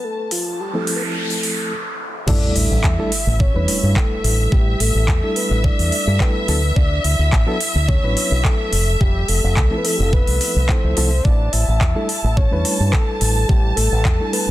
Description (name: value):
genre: nu-disco, nu disco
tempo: 107 BPM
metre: 4/4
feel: straight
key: unclear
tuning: A4 = 440 Hz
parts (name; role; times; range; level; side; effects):
- soft octave-layered synth lead; melody; 0.0-14.5 s; F4 to E5; -25 LUFS; left 2 dB; chorus, cassette tape, analog delay
- rich studio violin section; sustained chords; 0.0-14.5 s; E5 to A5; -27 LUFS; equal; sidechain pumping
- noise sweep and sub drop; sound effects; 0.4-4.5 s; none; -27 LUFS; equal; none
- pop drum kit; drums; 0.3-14.5 s; crash cymbal, handclaps, hi-hat; -23 LUFS; equal; studio reverb
- reed electric piano; accompaniment; 0.7-14.5 s; F3 to B4; -25 LUFS; right 1 dB; fast tremolo, sidechain pumping
- fingered electric bass with an envelope filter; bass; 2.3-14.5 s; F1 to G2; -18 LUFS; equal; none
- electronic kick drum; drums; 2.3-14.2 s; none; -17 LUFS; equal; studio reverb
room: little or no reverb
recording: dense, heavily limited modern master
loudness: -15 LUFS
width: side -15 dB against mid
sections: 0.0-2.3 A section; 2.3-14.5 B section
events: noise sweep 0.4-2.3; stop 1.7-2.3; drop 2.3-14.5; impact 2.3-4.5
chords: 0.0 Fmaj7; 2.3 A7sus4; 6.5 D69; 8.7 Fmaj7; 11.2 A7sus4